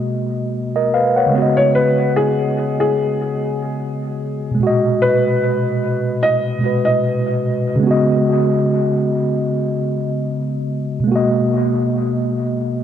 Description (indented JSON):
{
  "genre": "hip hop",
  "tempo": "74 BPM",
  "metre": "4/4",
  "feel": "swing 56% on 16ths",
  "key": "G# minor",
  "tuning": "A4 = 443 Hz",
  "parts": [
    { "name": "mellow tine electric piano", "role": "accompaniment", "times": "0.0-12.8 s", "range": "A#2 to F#5", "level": "-16 LUFS", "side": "equal", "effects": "medium stereo tremolo, low-pass filter, dub echo" },
    { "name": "felt-muted upright piano", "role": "melody", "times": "1.6-7.2 s", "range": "G#4 to D#5", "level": "-19 LUFS", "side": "left 1 dB", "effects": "low-pass filter, dub echo" }
  ],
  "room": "moderate plate reverb, RT60 3.4 s",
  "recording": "echo-heavy mix",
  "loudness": "-15 LUFS",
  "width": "side -9 dB against mid",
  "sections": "0.0-12.8 A section",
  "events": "none",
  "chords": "0.0 G#m9/B; 1.3 C#7sus4; 4.6 G#m9; 7.8 C#7sus4; 11.1 G#m9/B"
}